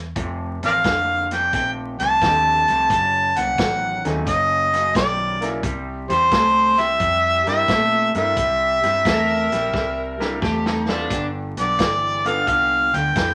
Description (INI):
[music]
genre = electric blues shuffle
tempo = 88 BPM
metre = 4/4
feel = swing 68% on 8ths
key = C mixolydian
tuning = A4 = 441 Hz
[part]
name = vintage muted fingered electric bass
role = bass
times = 0.0-13.3 s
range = F1 to Bb2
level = -32 LUFS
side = equal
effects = none
[part]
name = electric guitar through a small old amp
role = riff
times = 0.2-13.3 s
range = F2 to A3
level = -30 LUFS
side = equal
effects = none
[part]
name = vintage drum kit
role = drums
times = 0.2-13.3 s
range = hi-hat, kick drum, snare drum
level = -28 LUFS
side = equal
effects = none
[part]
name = clear harmonica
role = melody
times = 0.7-13.3 s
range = Bb4 to A5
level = -20 LUFS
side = equal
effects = overdrive
[part]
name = bright upright piano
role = accompaniment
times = 2.2-12.5 s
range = A3 to Eb5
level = -31 LUFS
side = equal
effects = none
[part]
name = overdriven slide guitar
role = second line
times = 9.1-11.3 s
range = D4 to Bb4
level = -30 LUFS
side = equal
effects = none
[sound]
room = wet studio reverb, RT60 0.6 s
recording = vinyl crackle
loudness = -20 LUFS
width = mono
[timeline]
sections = 0.0-13.3 A section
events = drum fill 9.7-11.1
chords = 0.2 F9; 2.9 F#dim7; 5.6 C9; 11.1 G7